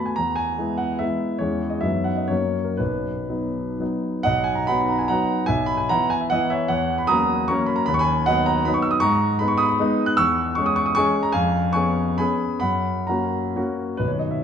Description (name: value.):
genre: classical, romantic triple-time dance for piano with dotted rhythms.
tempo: 114-168 BPM.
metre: 3/4.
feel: rubato.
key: B major.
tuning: A4 = 441 Hz.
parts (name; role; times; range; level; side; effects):
warm concert grand piano; solo; 0.0-14.4 s; B0 to F#6; -19 LUFS; equal; none.
room: wet recital hall reverb, RT60 1.6 s.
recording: dark, warm production.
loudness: -19 LUFS.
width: side -8 dB against mid.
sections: 0.0-4.3 A section; 4.3-14.0 B section.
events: none.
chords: 0.2 E; 1.4 C#m/E; 1.8 B/F#; 2.3 F#; 2.8 B; 5.5 E5/B; 6.7 F#7/E; 7.9 B/D#; 9.0 G#m; 10.2 C#m/E; 11.4 C#7/E#; 12.6 F#.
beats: | 0.18 0.60 1.02 | 1.42 1.84 2.32 | 2.80 3.30 3.81 | 4.26 4.69 5.11 | 5.49 5.91 6.33 | 6.71 7.11 7.51 | 7.89 8.28 8.67 | 9.04 9.41 9.81 | 10.19 10.57 10.98 | 11.35 11.76 12.20 | 12.63 13.09 13.57 | 13.99 14.43.